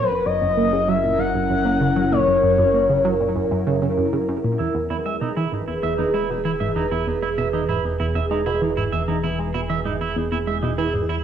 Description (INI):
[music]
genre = ambient, sequencer-driven space music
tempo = 97 BPM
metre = 4/4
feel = straight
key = E lydian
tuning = A4 = 437 Hz
[part]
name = expressive portamento lead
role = melody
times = 0.0-3.0 s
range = C#5 to F#5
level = -20 LUFS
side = left 3 dB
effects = chorus, cassette tape, plate reverb, tape echo
[part]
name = evolving wavetable pad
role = sustained chords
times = 0.0-11.2 s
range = E3 to E6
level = -24 LUFS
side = right 1 dB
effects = phaser, built-in reverb, cassette tape
[part]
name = tight sequenced synth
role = riff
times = 0.0-11.2 s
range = E2 to A#3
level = -24 LUFS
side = right 1 dB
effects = chorus, phaser, cassette tape, tape echo
[part]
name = fat analog bass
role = bass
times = 0.0-11.2 s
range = E1 to F#1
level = -30 LUFS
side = right 1 dB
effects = none
[part]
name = clean electric guitar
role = arpeggios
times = 4.6-11.1 s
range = D#4 to E5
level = -27 LUFS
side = right 7 dB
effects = auto-pan, low-pass filter, cassette tape, plate reverb, tape echo
[sound]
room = wet studio reverb, RT60 0.6 s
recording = home recording on cassette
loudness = -19 LUFS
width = side -9 dB against mid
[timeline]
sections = 0.0-4.6 A section; 4.6-11.2 B section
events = filter sweep on synth arpeggio sound 0.0-4.6; filter sweep on clean electric guitar 4.6-11.2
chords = 0.0 F#7; 4.6 E